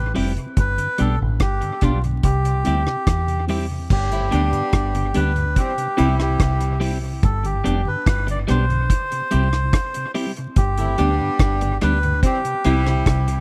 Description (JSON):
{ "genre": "roots reggae", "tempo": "72 BPM", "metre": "4/4", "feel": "straight", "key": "G major", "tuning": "A4 = 440 Hz", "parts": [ { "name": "melodica", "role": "melody", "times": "0.0-13.4 s", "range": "F4 to D5", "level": "-27 LUFS", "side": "equal", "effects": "tape echo" }, { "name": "mellow tonewheel organ", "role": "accompaniment", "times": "0.0-13.4 s", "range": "G2 to E4", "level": "-31 LUFS", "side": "equal", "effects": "slow rotary speaker, dub echo" }, { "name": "deep dub fingered electric bass", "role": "bass", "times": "0.0-13.4 s", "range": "F1 to E2", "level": "-23 LUFS", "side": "equal", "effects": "none" }, { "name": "clean electric guitar", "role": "accompaniment", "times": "0.1-12.9 s", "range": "G3 to G4", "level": "-30 LUFS", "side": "equal", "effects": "tape echo" }, { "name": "deep reggae drum kit", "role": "drums", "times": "0.2-13.4 s", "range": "crash cymbal, hi-hat, kick drum, rim click", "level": "-23 LUFS", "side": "equal", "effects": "none" }, { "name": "clear horn section", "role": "second line", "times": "4.1-13.4 s", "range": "E3 to E4", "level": "-30 LUFS", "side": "equal", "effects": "tape echo" } ], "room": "little or no reverb", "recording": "vinyl crackle", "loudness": "-20 LUFS", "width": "mono", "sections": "0.0-3.9 A section; 3.9-13.4 B section", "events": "none", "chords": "0.0 C; 0.6 G; 2.2 C; 3.9 G; 5.6 C; 7.2 G; 8.9 C; 10.6 G; 12.2 C" }